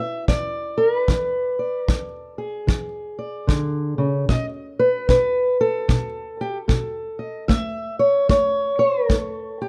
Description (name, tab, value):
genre	acoustic country blues, solo or duo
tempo	75 BPM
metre	4/4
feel	swing 62% on 8ths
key	E mixolydian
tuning	A4 = 444 Hz
part	fingerpicked steel-string acoustic guitar	melody	0.0-9.7 s	B2 to E5	-23 LUFS	equal	plate reverb
part	kick drum	drums	0.3-9.3 s	none	-23 LUFS	equal	none
room	light reverb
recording	dark, warm production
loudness	-21 LUFS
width	mono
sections	0.0-9.7 A section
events	none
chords	0.0 E7; 4.3 B7(no3); 7.5 A